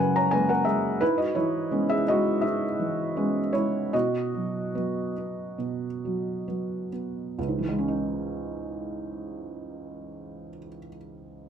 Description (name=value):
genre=neoclassical minimalist piano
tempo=66-88 BPM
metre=4/4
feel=rubato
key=C# minor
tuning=A4 = 438 Hz
part: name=felt-muted upright piano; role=solo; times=0.0-11.5 s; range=C#2 to A#5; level=-25 LUFS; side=equal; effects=none
room=light reverb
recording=none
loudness=-25 LUFS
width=side -8 dB against mid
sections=0.0-7.4 A section; 7.4-10.9 B section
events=slowing down 0.0-7.4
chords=0.0 F#add9; 1.0 E6/G#; 3.9 B; 7.4 C#madd9